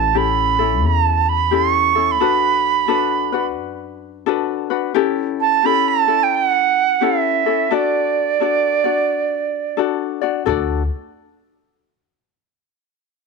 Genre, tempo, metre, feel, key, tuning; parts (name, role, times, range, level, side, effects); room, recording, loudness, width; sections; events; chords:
Hawaiian; 87 BPM; 4/4; swing 64% on 8ths; D major; A4 = 440 Hz
bright reedy jazz flute; melody; 0.0-9.8 s; D5 to C#6; -16 LUFS; right 11 dB
ukulele; accompaniment; 0.0-10.8 s; C#4 to D5; -20 LUFS; left 15 dB
upright bass; bass; 0.0-10.9 s; A1 to F#2; -22 LUFS; left 2 dB
light reverb, small room ambience; 1960s-style stereo with parts hard left and right; -15 LUFS; side -3 dB against mid
0.0-10.5 A section; 10.5-13.2 B section
0.0 A7; 2.2 Bm7; 5.0 A7; 7.7 D